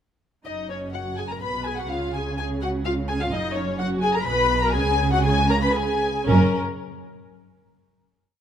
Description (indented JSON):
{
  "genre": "quick classical-period movement for string orchestra",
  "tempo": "114-128 BPM",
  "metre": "3/4",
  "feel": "rubato",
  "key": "F# major",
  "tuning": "A4 = 442 Hz",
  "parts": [
    { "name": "muted chamber violin section", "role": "melody", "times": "0.5-6.6 s", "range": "C#4 to B5", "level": "-27 LUFS", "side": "left 4 dB", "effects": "none" },
    { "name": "muted symphonic violin section", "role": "second line", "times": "0.5-6.6 s", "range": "A#4 to B5", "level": "-29 LUFS", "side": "left 4 dB", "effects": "none" },
    { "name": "muted studio viola section", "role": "accompaniment", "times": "0.5-6.6 s", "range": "C#4 to B4", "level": "-27 LUFS", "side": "right 1 dB", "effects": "none" },
    { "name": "muted symphonic cello section", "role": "bass", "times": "0.5-6.6 s", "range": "F#2 to C#3", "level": "-26 LUFS", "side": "right 2 dB", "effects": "none" },
    { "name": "muted symphonic double bass section", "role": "bass", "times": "0.5-6.6 s", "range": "F#1 to C#2", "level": "-28 LUFS", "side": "right 2 dB", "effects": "none" }
  ],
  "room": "moderate concert hall reverb, RT60 1.9 s",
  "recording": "none",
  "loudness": "-20 LUFS",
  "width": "side -9 dB against mid",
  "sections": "0.5-6.3 A section; 6.3-7.8 final chord",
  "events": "slowing down 2.6-6.3",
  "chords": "0.5 F#5; 1.4 G#m7/B; 1.9 C#; 3.3 F#69; 4.3 N.C.; 4.8 C#5; 6.3 F#"
}